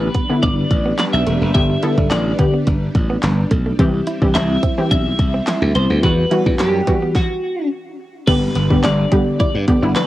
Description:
dance-pop; 107 BPM; 4/4; straight; G major; A4 = 440 Hz
twelve-string electric guitar; melody; 0.0-10.1 s; F#4 to E5; -22 LUFS; equal; wide subtle chorus, cassette tape, analog delay
wide unison pluck; accompaniment; 0.0-10.1 s; D3 to A4; -19 LUFS; left 1 dB; lush chorus, sidechain pumping, plate reverb
string machine, violins; sustained chords; 0.0-10.1 s; E3 to F#5; -26 LUFS; equal; ensemble chorus, sidechain pumping
glassy slap bass; bass; 0.0-9.9 s; E1 to G2; -19 LUFS; equal; sidechain pumping
direct-recorded clean electric guitar; riff; 0.1-10.0 s; G3 to E4; -26 LUFS; right 4 dB; wide subtle chorus
pop drum kit; drums; 0.1-10.1 s; crash cymbal, handclaps, hi-hat, kick drum, snare drum; -19 LUFS; equal; cassette tape
swell and downlifter; sound effects; 6.6-10.1 s; -33 LUFS; left 2 dB
light reverb; home recording on cassette; -14 LUFS; side -15 dB against mid
0.0-8.3 A section; 8.3-10.1 B section
stop 7.2-8.3
0.0 G; 3.8 C; 6.0 Emadd9; 7.2 N.C.; 8.3 G

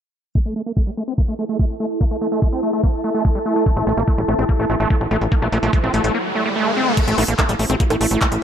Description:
psychedelic trance; 145 BPM; 4/4; straight; A phrygian; A4 = 439 Hz
screaming distorted acid line; riff; 0.4-8.3 s; G3 to C4; -22 LUFS; moving between left 3 dB and right 3 dB; distortion, chorus, auto-pan, sidechain pumping, digital delay
drum and bass drum kit; drums; 0.4-8.4 s; bongos, crash cymbal, handclaps, hi-hat; -23 LUFS; right 1 dB
electronic kick drum; drums; 0.4-8.3 s; -17 LUFS; equal
granular cloud pad; texture; 1.6-6.1 s; E4 to A5; -24 LUFS; equal; built-in reverb, sidechain pumping
riser; sound effects; 4.9-7.0 s; -25 LUFS; right 2 dB
tight sequencer bass; bass; 3.8-8.4 s; A1 to Bb1; -20 LUFS; equal; tube saturation
vowel-sweep wobble bass; second line; 4.3-8.2 s; E3 to C4; -33 LUFS; left 3 dB
swarming drone; sustained chords; 7.5-8.4 s; A3 to E4; -26 LUFS; right 2 dB; built-in reverb, sidechain pumping
light reverb; low-pass filter; -16 LUFS; side -9 dB against mid
0.4-7.0 A section; 7.0-8.4 B section
filter sweep on acid bass 0.4-7.0; filter sweep 0.4-7.0; riser 4.9-7.0
0.4 A5

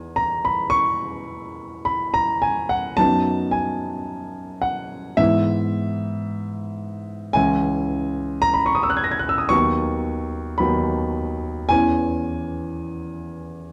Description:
classical, romantic nocturne for solo piano; 55 BPM; 4/4; rubato; A4 = 439 Hz
dark grand piano; solo; 0.0-13.7 s; C#2 to A#6; -22 LUFS; equal
light reverb; close, detailed microphones; -22 LUFS; mono
0.0-13.7 A section
0.0 Emaj7; 3.0 B/F#; 5.2 E/G#; 7.4 C#m; 9.5 B/D#; 11.7 C#m7/E

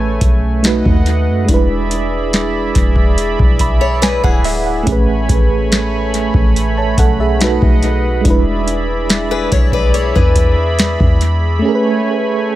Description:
contemporary R&B; 71 BPM; 4/4; straight; A major; A4 = 439 Hz
FM electric piano with auto-pan; accompaniment; 0.0-12.6 s; G#3 to B5; -18 LUFS; right 2 dB; tape echo
warm analog pad; sustained chords; 0.0-12.6 s; A3 to B5; -20 LUFS; right 2 dB; chorus, sidechain pumping
warm 808-style bass; bass; 0.0-11.6 s; D1 to F#2; -16 LUFS; equal
booming analog drum machine; drums; 0.2-11.4 s; hi-hat, kick drum, snare drum; -14 LUFS; equal; overdrive
picked old ladder-braced acoustic guitar; arpeggios; 3.8-11.4 s; E4 to D5; -19 LUFS; left 6 dB; tape echo
little or no reverb; echo-heavy mix; -11 LUFS; side -14 dB against mid
0.0-12.6 A section
FM electric piano fill 3.2-4.9
0.0 Amaj9; 0.6 B7; 1.5 E7; 4.9 Amaj9; 7.4 B7; 8.3 E7; 11.6 Amaj9

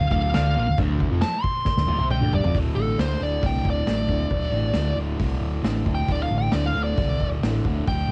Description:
garage rock duo or trio; 135 BPM; 4/4; straight; D minor; A4 = 440 Hz
fuzz lead guitar; melody; 0.0-8.1 s; A4 to C6; -29 LUFS; equal; distortion
fuzz guitar; riff; 0.0-8.1 s; D2 to D4; -30 LUFS; equal; distortion, cassette tape
overdriven fingered electric bass; bass; 0.0-8.1 s; D1 to D2; -27 LUFS; equal
vintage drum kit; drums; 0.1-8.0 s; crash cymbal, hi-hat, kick drum, snare drum, toms; -29 LUFS; equal; cassette tape
little or no reverb; home recording on cassette; -23 LUFS; mono
0.0-2.5 A section; 2.5-8.1 B section
lead electric guitar solo 0.0-2.5; drum fill 1.7-2.5
0.0 Dm; 2.5 D5

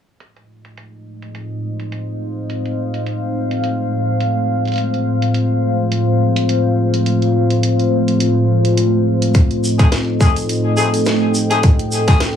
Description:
glitch hop; 105 BPM; 4/4; swing 56% on 16ths; A4 = 439 Hz
dark analog pad; sustained chords; 1.2-12.4 s; A3 to F5; -17 LUFS; right 1 dB; chorus, phaser, sidechain pumping
drum and bass drum kit; drums; 0.2-12.3 s; hi-hat, snare drum; -25 LUFS; right 1 dB; overdrive, low-pass filter on hats, studio ambience, low-pass filter on snare
deep dark ambient pad; texture; 2.0-12.4 s; C5 to G5; -21 LUFS; left 4 dB; chorus, built-in reverb, sidechain pumping
electronic kick drum; drums; 9.3-12.2 s; -12 LUFS; equal; overdrive, studio ambience
tube shaker; percussion; 9.3-12.3 s; -27 LUFS; right 1 dB
clear horn section; stabs; 9.8-12.2 s; A3 to G#4; -20 LUFS; left 4 dB; sidechain pumping, digital delay
moderate studio reverb, RT60 0.5 s; small room ambience; -14 LUFS; side -8 dB against mid
0.2-12.4 A section
filter sweep on analog synth pad 0.2-12.4
0.2 F7#9

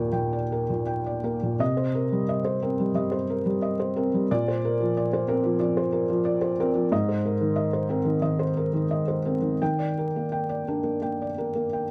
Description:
neoclassical minimalist piano; 90 BPM; 4/4; uneven beats, rubato; C minor; A4 = 440 Hz
felt-muted upright piano; solo; 0.0-11.9 s; Eb2 to G5; -26 LUFS; equal
little or no reverb; dry, close 1970s-style studio recording, vinyl crackle; -26 LUFS; mono
0.0-1.6 A section; 1.6-11.9 B section
0.0 Ebmaj7; 1.6 Cm7; 4.3 Bbadd9; 6.9 Abadd9; 9.6 Ebmaj7

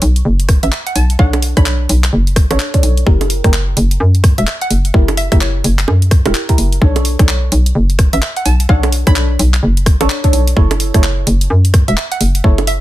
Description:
UK garage, two-step garage; 128 BPM; 4/4; swing 61% on 16ths; B minor; A4 = 440 Hz
hollow knocking FM bass; bass; 0.0-12.8 s; E1 to F#2; -13 LUFS; equal; tube saturation
garage drum kit; drums; 0.0-12.8 s; bongos, handclaps, hi-hat, rim click; -19 LUFS; right 1 dB; soft clipping on snare, studio reverb
electronic kick drum; drums; 0.5-12.6 s; -10 LUFS; equal; studio reverb
hollow square pluck; melody; 0.6-12.8 s; C#5 to B5; -21 LUFS; right 2 dB; chorus, phaser, tape echo
deep mellow chord stab; stabs; 1.2-12.6 s; D4 to C#5; -21 LUFS; right 1 dB; chorus, tape echo
little or no reverb; dense, heavily limited modern master; -10 LUFS; side -15 dB against mid
0.0-12.8 A section
0.0 Bm9; 3.1 F#7b9; 6.8 Bm9; 10.6 F#m7

